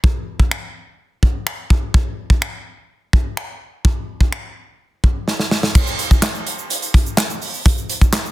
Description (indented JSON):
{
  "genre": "pop",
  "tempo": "126 BPM",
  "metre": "4/4",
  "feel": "straight",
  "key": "none",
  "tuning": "none",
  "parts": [
    { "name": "modern studio drum kit", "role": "drums", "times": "0.0-8.2 s", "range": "crash cymbal, finger snaps, handclaps, hi-hat, kick drum, snare drum", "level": "-15 LUFS", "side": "equal", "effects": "soft clipping on snare" },
    { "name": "tube shaker", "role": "percussion", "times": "5.8-8.3 s", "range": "none", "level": "-33 LUFS", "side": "right 6 dB", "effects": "none" }
  ],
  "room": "little or no reverb",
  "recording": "dense, heavily limited modern master",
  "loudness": "-16 LUFS",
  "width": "side -17 dB against mid",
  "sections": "0.0-5.8 A section; 5.8-8.3 B section",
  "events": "drum fill 5.3-5.8",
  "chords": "none"
}